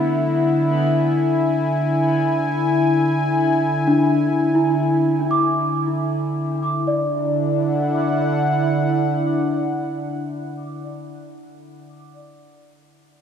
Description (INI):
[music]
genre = ambient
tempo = 68 BPM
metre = 4/4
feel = straight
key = D lydian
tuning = A4 = 440 Hz
[part]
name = warm analog pad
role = sustained chords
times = 0.0-11.2 s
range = D3 to G#5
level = -19 LUFS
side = equal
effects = chorus
[part]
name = small celesta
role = arpeggios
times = 3.9-12.9 s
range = D4 to D6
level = -23 LUFS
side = equal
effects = diffuse ambient delay
[sound]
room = wet cathedral reverb, RT60 5.3 s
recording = dark, warm production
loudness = -17 LUFS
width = side -8 dB against mid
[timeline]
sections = 0.0-6.9 A section; 6.9-10.4 B section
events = none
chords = 0.0 Dadd9